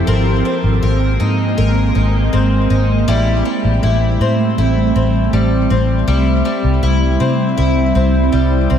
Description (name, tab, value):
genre	dream pop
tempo	80 BPM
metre	4/4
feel	straight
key	C major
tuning	A4 = 440 Hz
part	ethereal airy pad	sustained chords	0.0-8.8 s	G3 to E4	-17 LUFS	right 1 dB	ensemble chorus, built-in reverb
part	picked twelve-string acoustic guitar	arpeggios	0.0-8.8 s	G3 to Bb4	-20 LUFS	left 4 dB	analog chorus, ping-pong delay
part	vintage muted fingered electric bass	bass	0.0-8.8 s	Ab1 to C3	-15 LUFS	equal	none
room	moderate huge ambient reverb, RT60 4.4 s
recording	none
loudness	-12 LUFS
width	side -8 dB against mid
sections	0.0-8.8 A section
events	none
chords	0.1 Abadd9; 3.1 Am7; 6.1 C